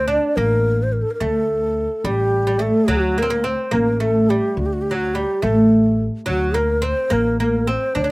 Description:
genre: persian.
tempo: 71 BPM (dotted quarters).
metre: 6/8.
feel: straight.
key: D dastgah homayun.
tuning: A4 = 442 Hz.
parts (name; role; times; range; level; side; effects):
breathy mellow ney; melody; 0.0-8.1 s; F#4 to D5; -20 LUFS; equal; none.
oud; second line; 0.0-8.1 s; F#3 to D4; -20 LUFS; right 1 dB; none.
upright bass; bass; 0.0-8.1 s; A1 to D2; -23 LUFS; equal; none.
room: light reverb.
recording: recorded outdoors, with no room sound.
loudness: -16 LUFS.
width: side -23 dB against mid.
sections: 0.0-8.1 A section.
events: none.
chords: none.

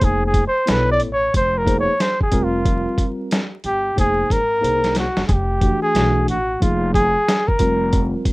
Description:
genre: hip hop, jazz-hop.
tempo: 91 BPM.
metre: 4/4.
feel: swing 62% on 16ths.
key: F minor.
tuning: A4 = 441 Hz.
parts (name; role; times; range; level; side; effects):
breathy flugelhorn; melody; 0.0-8.1 s; F4 to D5; -19 LUFS; equal; none.
tine electric piano; accompaniment; 0.0-8.3 s; E3 to C#5; -23 LUFS; equal; medium stereo tremolo.
upright bass; bass; 0.0-8.1 s; F1 to C2; -23 LUFS; equal; none.
boom bap sampler-style drum kit; drums; 0.0-8.3 s; hi-hat, kick drum, snare drum; -20 LUFS; equal; vintage 12-bit sampler grit.
room: little or no reverb.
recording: rough home demo mix, vinyl crackle.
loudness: -16 LUFS.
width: side -22 dB against mid.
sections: 0.0-8.3 A section.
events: flugelhorn solo 0.0-8.3; drum fill 4.6-5.3.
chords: 0.0 Fm7; 0.7 Bsus2; 1.3 Bbsus2/F; 2.3 Fsus24; 4.0 Ab69/F; 4.6 Ab9; 5.3 Fsus2; 6.0 Bm7; 6.6 Bb5/F; 7.6 Fsus24.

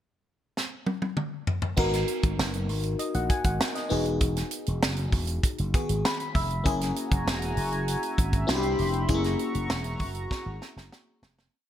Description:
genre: polished 1980s jazz-funk pop.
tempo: 98 BPM.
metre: 4/4.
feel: straight.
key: unclear.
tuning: A4 = 439 Hz.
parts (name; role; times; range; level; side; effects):
tight funk drum kit; drums; 0.6-11.5 s; crash cymbal, hi-hat, kick drum, snare drum, toms; -28 LUFS; equal; none.
FM electric piano; accompaniment; 1.8-11.5 s; D#3 to B5; -30 LUFS; left 2 dB; phaser, wide subtle chorus.
slap bass with an envelope filter; bass; 1.8-11.5 s; E1 to C2; -29 LUFS; equal; none.
chorused pulse-width pad; sustained chords; 6.7-11.5 s; F#4 to C#6; -33 LUFS; equal; none.
room: moderate plate reverb, RT60 1.9 s, small room reverb.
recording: bright 1980s-style digital production.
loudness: -25 LUFS.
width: side -11 dB against mid.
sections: 0.0-1.8 pickup bar; 1.8-11.5 pre-chorus.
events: drum fill 0.6-1.8, 10.3-11.5; FM electric piano fill 5.7-6.7; fade-out 9.1-11.5.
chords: 0.0 N.C.; 1.8 G#m7; 3.9 Emaj7; 6.7 F#9; 8.5 Cmaj7; 9.1 F#7.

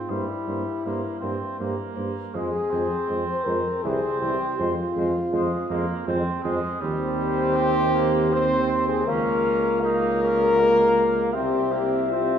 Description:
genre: classical, brass quintet.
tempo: 80 BPM.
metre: 3/4.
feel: straight.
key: unclear.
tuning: A4 = 440 Hz.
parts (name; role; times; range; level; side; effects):
mellow trumpet; second line; 0.0-12.4 s; G3 to Eb4; -30 LUFS; right 4 dB; none.
warm French horn; accompaniment; 0.0-12.4 s; E4 to C5; -24 LUFS; left 2 dB; none.
dark cornet; melody; 0.1-12.4 s; C5 to F5; -31 LUFS; left 6 dB; none.
bright trombone; accompaniment; 0.1-12.4 s; E3 to C4; -31 LUFS; right 4 dB; none.
warm tuba; bass; 0.1-12.4 s; C2 to G2; -27 LUFS; right 3 dB; none.
room: wet recital hall reverb, RT60 1.5 s.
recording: heard from further back in the room.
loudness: -21 LUFS.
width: side -8 dB against mid.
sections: 0.0-12.4 A section.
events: none.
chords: 0.1 C7/G; 2.3 Fm; 3.8 C; 4.6 Fm; 6.8 Cm/Eb; 9.1 Bbm/Db; 11.3 C.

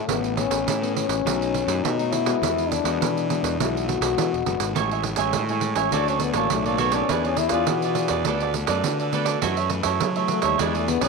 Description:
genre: samba and choro.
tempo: 103 BPM.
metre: 4/4.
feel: straight.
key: A major.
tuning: A4 = 437 Hz.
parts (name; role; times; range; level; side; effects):
breathy trombone; second line; 0.0-11.1 s; G3 to F#4; -26 LUFS; left 8 dB; none.
nylon-string guitar; accompaniment; 0.0-11.1 s; F#2 to G#4; -30 LUFS; left 10 dB; none.
fuzz fingered electric bass; bass; 0.1-11.1 s; E1 to F#3; -28 LUFS; equal; overdrive.
pandeiro; percussion; 0.1-11.1 s; none; -27 LUFS; right 11 dB; none.
cavaquinho; accompaniment; 4.7-11.1 s; D4 to G#5; -25 LUFS; right 11 dB; none.
room: moderate plate reverb, RT60 3.8 s.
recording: 1960s-style stereo with parts hard left and right.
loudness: -20 LUFS.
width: side -3 dB against mid.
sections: 0.0-11.1 A section.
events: trombone solo 0.0-11.1.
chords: 0.1 Aadd9; 1.3 B7; 2.4 Eadd9; 4.8 Amaj7; 5.9 Dmaj7; 7.1 E7; 8.3 Bm7/D; 9.4 F#m7.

